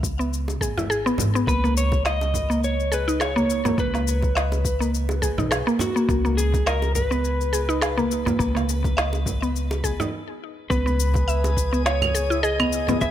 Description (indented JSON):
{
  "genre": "organic downtempo",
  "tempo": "104 BPM",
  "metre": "4/4",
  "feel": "swing 56% on 16ths",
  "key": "unclear",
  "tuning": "A4 = 440 Hz",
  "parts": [
    { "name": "upright bass", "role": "bass", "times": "0.0-13.1 s", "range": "G#1 to C#2", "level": "-25 LUFS", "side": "equal", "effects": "sidechain pumping" },
    { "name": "electronic kick drum", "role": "drums", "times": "0.0-13.1 s", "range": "none", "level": "-27 LUFS", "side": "equal", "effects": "overdrive" },
    { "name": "electronic shaker, snare drum and claves", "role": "drums", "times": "0.0-13.1 s", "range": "none", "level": "-28 LUFS", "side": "equal", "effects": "overdrive" },
    { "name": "mallet-like synth pluck", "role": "arpeggios", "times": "0.2-13.1 s", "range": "A#3 to E5", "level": "-25 LUFS", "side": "equal", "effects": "chorus, ping-pong delay" },
    { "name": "bongos and congas", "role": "percussion", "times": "0.5-13.0 s", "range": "none", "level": "-31 LUFS", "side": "right 3 dB", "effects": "none" },
    { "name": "electric slide guitar", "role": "melody", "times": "1.5-13.1 s", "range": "F#4 to E5", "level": "-27 LUFS", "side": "equal", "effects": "digital delay" },
    { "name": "drifting glass-harmonics texture", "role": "texture", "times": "11.1-13.1 s", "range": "G#4 to G#5", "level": "-34 LUFS", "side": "right 1 dB", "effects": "chorus, built-in reverb" }
  ],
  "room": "light reverb",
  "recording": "none",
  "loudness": "-20 LUFS",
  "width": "side -11 dB against mid",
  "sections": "0.0-10.7 A section; 10.7-13.1 B section",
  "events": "stop 10.1-10.7",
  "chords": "0.0 C#m7; 1.5 G#madd9; 10.7 C#m7"
}